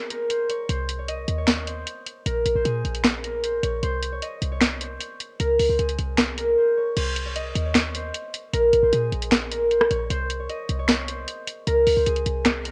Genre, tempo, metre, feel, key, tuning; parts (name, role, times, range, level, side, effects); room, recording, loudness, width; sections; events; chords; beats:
hip hop, trap; 153 BPM; 4/4; half-time; C phrygian; A4 = 440 Hz
concert harp; melody; 0.0-12.7 s; Ab4 to Eb5; -26 LUFS; equal; cassette tape
trap drum kit; drums; 0.1-12.7 s; crash cymbal, finger snaps, hi-hat, rim click, snare drum; -26 LUFS; equal; cassette tape
short 808-style bass; bass; 0.7-12.7 s; Bb1 to Bb2; -30 LUFS; equal
moderate spring reverb, RT60 1.5 s; home recording on cassette; -23 LUFS; mono
0.0-7.0 A section; 7.0-12.7 B section
break 0.0-0.7
0.0 N.C.; 0.7 Cm; 2.3 Bb7sus2; 3.8 Cm; 5.4 Db5; 7.0 Cm; 8.5 Bb7sus2; 10.1 Cm; 11.7 Db5
0.30 | 0.69 1.08 1.48 1.87 | 2.26 2.65 3.04 3.44 | 3.83 4.22 4.61 5.00 | 5.40 5.79 6.18 6.57 | 6.97 7.36 7.75 8.14 | 8.54 8.93 9.32 9.71 | 10.10 10.50 10.89 11.28 | 11.67 12.06 12.46